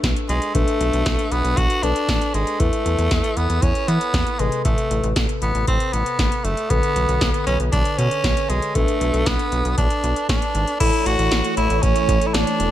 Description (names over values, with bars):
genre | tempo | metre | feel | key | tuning
synth-pop | 117 BPM | 4/4 | straight | unclear | A4 = 440 Hz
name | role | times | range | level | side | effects
raspy tenor saxophone | melody | 0.0-12.7 s | G#3 to F#4 | -22 LUFS | right 1 dB | tape echo
muted felt-like synth keys | accompaniment | 0.0-12.7 s | C3 to C#5 | -26 LUFS | left 3 dB | chorus
rubbery square bass | bass | 0.0-12.7 s | E1 to E3 | -22 LUFS | equal | none
electro analog drum machine | drums | 0.0-12.7 s | crash cymbal, hi-hat, kick drum, snare drum | -22 LUFS | equal | none
ensemble organ-string | sustained chords | 10.8-12.7 s | E3 to C#5 | -24 LUFS | right 1 dB | phaser, ensemble chorus
room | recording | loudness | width
light reverb, digital ambience | none | -17 LUFS | side -12 dB against mid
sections
0.0-10.8 A section; 10.8-12.7 B section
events
none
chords
0.0 Bm7; 2.6 Esus4; 4.4 Amadd9; 6.7 Bm7; 10.8 A